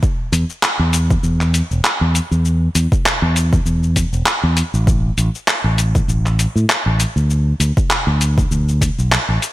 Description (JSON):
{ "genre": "sunset chillout", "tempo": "99 BPM", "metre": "4/4", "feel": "swing 56% on 16ths", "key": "unclear", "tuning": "A4 = 440 Hz", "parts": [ { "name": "dusty soul sampler-style drum kit", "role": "drums", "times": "0.0-9.5 s", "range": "handclaps, hi-hat, shaker", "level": "-19 LUFS", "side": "equal", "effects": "gated reverb" }, { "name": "electronic kick drum", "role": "drums", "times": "0.0-8.9 s", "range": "none", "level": "-18 LUFS", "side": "equal", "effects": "overdrive" }, { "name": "fingered electric bass", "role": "bass", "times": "0.3-9.4 s", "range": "E1 to A2", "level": "-15 LUFS", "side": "equal", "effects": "none" } ], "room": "light reverb", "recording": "bright 1980s-style digital production", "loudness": "-14 LUFS", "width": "side -16 dB against mid", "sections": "0.0-9.5 A section", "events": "none", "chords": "none" }